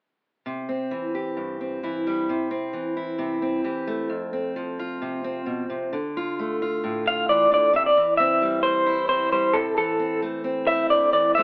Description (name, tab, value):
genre	folk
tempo	132 BPM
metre	4/4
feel	straight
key	C major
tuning	A4 = 441 Hz
part	fingerpicked steel-string acoustic guitar	accompaniment	0.5-11.4 s	F2 to G4	-29 LUFS	equal	none
part	electric guitar through a small old amp	melody	7.1-11.4 s	A4 to F5	-21 LUFS	equal	tremolo
room	moderate large studio reverb, RT60 1.2 s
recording	AM radio sound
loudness	-24 LUFS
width	mono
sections	0.5-7.7 A section; 7.7-11.4 B section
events	none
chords	0.5 C; 2.3 Am/C; 4.1 F5; 5.9 Dm; 7.7 C; 9.5 Am/C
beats	| 0.47 0.92 1.38 1.83 | 2.29 2.74 3.19 3.65 | 4.10 4.55 5.01 5.46 | 5.91 6.37 6.82 7.27 | 7.73 8.18 8.63 9.09 | 9.54 9.99 10.45 10.90 | 11.36